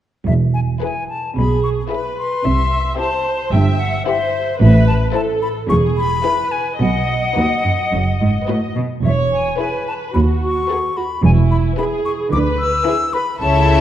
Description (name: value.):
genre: cinematic.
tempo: 110 BPM.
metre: 4/4.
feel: straight.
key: E major.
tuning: A4 = 440 Hz.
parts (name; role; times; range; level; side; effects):
bright silver concert flute; second line; 0.3-13.8 s; E5 to E6; -21 LUFS; left 3 dB; none.
clear studio double bass section; bass; 0.3-13.8 s; E1 to D#2; -17 LUFS; right 2 dB; none.
rich studio cello section; bass; 0.3-13.8 s; D#2 to D3; -20 LUFS; right 1 dB; none.
warm studio violin section; melody; 0.8-13.8 s; B4 to E5; -27 LUFS; left 7 dB; none.
warm studio violin section; second line; 0.8-13.8 s; D#4 to A4; -26 LUFS; left 4 dB; none.
warm studio viola section; accompaniment; 1.4-13.8 s; E4 to E5; -22 LUFS; right 1 dB; none.
room: moderate concert hall reverb, RT60 2.1 s.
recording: dark, warm production.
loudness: -15 LUFS.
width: side -11 dB against mid.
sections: 0.3-13.8 A section.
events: none.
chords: 0.3 E; 2.4 C; 4.6 Am; 5.7 E; 6.8 B; 9.0 E; 10.1 B7/D#; 11.2 E; 12.3 E7/D.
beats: | 0.26 0.81 1.36 1.91 | 2.45 2.99 3.53 4.07 | 4.60 5.14 5.69 6.25 | 6.81 7.37 7.92 8.48 | 9.04 9.59 10.14 10.69 | 11.24 11.78 12.32 12.86 | 13.41.